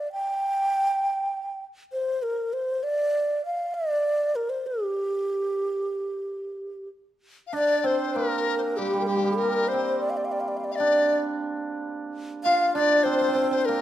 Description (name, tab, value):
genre	chinese traditional, Chinese chamber ensemble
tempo	98 BPM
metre	4/4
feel	rubato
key	G yu mode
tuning	A4 = 440 Hz
part	mellow hollow xiao	melody	0.0-13.8 s	G4 to G5	-25 LUFS	right 1 dB	none
part	hammered dulcimer	second line	7.5-13.8 s	G3 to F4	-27 LUFS	right 3 dB	none
part	large dizi	second line	7.5-13.8 s	G4 to F5	-26 LUFS	left 5 dB	none
room	light reverb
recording	close, detailed microphones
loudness	-23 LUFS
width	side -12 dB against mid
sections	0.0-7.5 A section; 7.5-13.8 B section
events	none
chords	none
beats	| 0.10 0.71 1.32 1.92 | 2.53 3.15 3.75 4.36 | 4.97 5.59 6.23 6.89 | 7.53 8.16 8.78 9.40 | 10.02 10.62 11.23 11.84 | 12.45 13.06 13.67